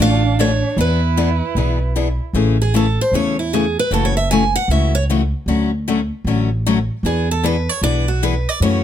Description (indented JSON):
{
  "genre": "acoustic string swing (jazz manouche)",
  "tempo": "153 BPM",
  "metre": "4/4",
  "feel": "swing 63% on 8ths",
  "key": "A major",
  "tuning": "A4 = 440 Hz",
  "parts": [
    { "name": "picked steel-string acoustic guitar", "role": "melody", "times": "0.0-8.8 s", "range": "E4 to G#5", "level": "-20 LUFS", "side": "right 3 dB", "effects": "none" },
    { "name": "warm violin", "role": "second line", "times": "0.0-2.2 s", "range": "D4 to E4", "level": "-24 LUFS", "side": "right 10 dB", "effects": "none" },
    { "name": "picked steel-string acoustic guitar", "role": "accompaniment", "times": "0.0-8.8 s", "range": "C#3 to A4", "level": "-19 LUFS", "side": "left 6 dB", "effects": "none" },
    { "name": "upright bass", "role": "bass", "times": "0.0-8.8 s", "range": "F#1 to F#2", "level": "-18 LUFS", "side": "equal", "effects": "none" }
  ],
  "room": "light reverb",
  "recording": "close, detailed microphones",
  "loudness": "-15 LUFS",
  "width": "side -10 dB against mid",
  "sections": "0.0-2.3 A section; 2.3-8.8 B section",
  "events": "steel-string acoustic guitar solo 2.3-8.8",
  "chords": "0.0 Dm; 0.8 E7; 2.3 Amaj7; 3.9 F#m7; 5.5 Dmaj7; 7.0 E7"
}